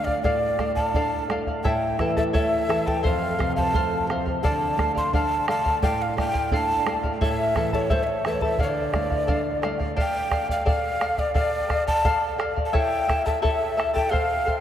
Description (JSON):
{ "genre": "andean folk, Andean ensemble", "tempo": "86 BPM", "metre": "2/4", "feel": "straight", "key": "D minor", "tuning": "A4 = 442 Hz", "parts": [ { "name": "breathy mellow quena", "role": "melody", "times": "0.0-14.6 s", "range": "C5 to C6", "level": "-25 LUFS", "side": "equal", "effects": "none" }, { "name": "charango", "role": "accompaniment", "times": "0.0-14.6 s", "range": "E4 to A5", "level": "-26 LUFS", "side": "left 2 dB", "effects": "none" }, { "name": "nylon-string guitar", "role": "accompaniment", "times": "0.0-10.0 s", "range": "F2 to D4", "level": "-30 LUFS", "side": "right 3 dB", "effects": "none" }, { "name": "bombo", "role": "percussion", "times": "0.1-14.6 s", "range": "none", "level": "-28 LUFS", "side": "right 1 dB", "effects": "none" } ], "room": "wet cathedral reverb, RT60 6.2 s", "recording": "in a vast, echoing space", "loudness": "-21 LUFS", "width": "side -10 dB against mid", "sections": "0.0-10.0 A section; 10.0-14.6 A section", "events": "none", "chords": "0.0 Dm; 1.6 A; 3.0 F; 4.4 Dm; 7.2 A; 8.6 Dm; 12.7 A" }